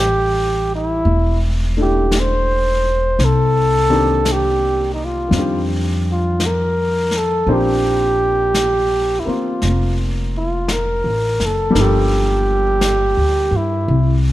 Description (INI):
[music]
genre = jazz ballad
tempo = 56 BPM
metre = 4/4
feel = swing 66% on 8ths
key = unclear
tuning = A4 = 440 Hz
[part]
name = breathy flugelhorn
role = melody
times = 0.0-14.2 s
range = Eb4 to C5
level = -18 LUFS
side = right 1 dB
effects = none
[part]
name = warm baby grand piano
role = accompaniment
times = 0.0-13.9 s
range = Eb3 to C5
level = -23 LUFS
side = left 2 dB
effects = none
[part]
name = upright bass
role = bass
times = 0.0-14.3 s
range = E1 to G2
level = -19 LUFS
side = equal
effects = none
[part]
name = vintage brush drum kit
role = drums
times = 1.1-14.3 s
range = brushed snare drum, hi-hat, snare drum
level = -26 LUFS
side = left 1 dB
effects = none
[sound]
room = light reverb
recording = dark, warm production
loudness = -15 LUFS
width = side -15 dB against mid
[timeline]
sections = 0.0-14.3 A section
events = none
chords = 0.0 Am7; 3.2 Cm7; 5.3 Fsus2; 7.5 Bbadd9; 11.7 Gm7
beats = 0.00 1.06 2.13 | 3.19 4.26 5.33 6.39 | 7.46 8.54 9.61 10.68 | 11.74 12.81 13.87